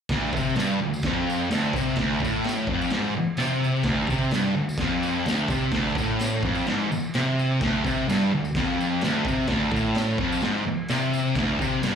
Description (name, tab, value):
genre	garage rock duo or trio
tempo	128 BPM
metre	4/4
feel	straight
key	D minor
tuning	A4 = 440 Hz
part	thick fuzz guitar	riff	0.1-12.0 s	D2 to C3	-22 LUFS	equal	distortion
part	raw garage drum kit	drums	0.1-11.9 s	crash cymbal, kick drum, snare drum	-30 LUFS	equal	none
part	tambourine	percussion	0.1-11.9 s	none	-43 LUFS	right 1 dB	none
room	moderate club reverb, RT60 0.8 s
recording	live gig heard through the venue's PA, club reverb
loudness	-22 LUFS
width	side -7 dB against mid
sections	0.1-12.0 A section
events	none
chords	none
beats	| 0.12 0.59 1.06 1.52 | 1.99 2.46 2.93 3.40 | 3.87 4.34 4.81 5.28 | 5.74 6.21 6.68 7.15 | 7.62 8.09 8.56 9.03 | 9.49 9.96 10.43 10.90 | 11.37 11.84